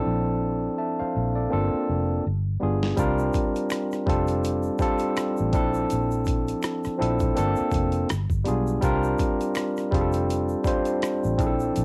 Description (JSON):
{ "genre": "R&B, neo-soul", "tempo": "82 BPM", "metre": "4/4", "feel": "swing 57% on 16ths", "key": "unclear", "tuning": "A4 = 441 Hz", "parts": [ { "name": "barky tine electric piano", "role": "accompaniment", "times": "0.0-11.8 s", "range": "F3 to A5", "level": "-27 LUFS", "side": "equal", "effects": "overdrive, cassette tape" }, { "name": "vintage muted fingered electric bass", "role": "bass", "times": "0.1-11.8 s", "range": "F1 to C2", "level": "-29 LUFS", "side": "equal", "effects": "none" }, { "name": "boom bap sampler-style drum kit", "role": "drums", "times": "2.8-11.8 s", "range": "hi-hat, kick drum, rim click, snare drum", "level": "-30 LUFS", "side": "equal", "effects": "cassette tape" }, { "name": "egg shaker and finger snaps", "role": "percussion", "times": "3.0-11.8 s", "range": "none", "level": "-45 LUFS", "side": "equal", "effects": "none" } ], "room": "light reverb", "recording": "home recording on cassette", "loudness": "-25 LUFS", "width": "mono", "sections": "0.0-11.8 A section", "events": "drum fill 1.5-3.0", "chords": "0.0 Bbmaj9#11; 1.5 Gm11; 2.2 G7b9; 3.0 C9sus4; 4.1 F69; 5.5 Bbmaj9#11; 7.4 Gm11; 8.1 G7b9; 8.8 C9sus4; 9.9 F69" }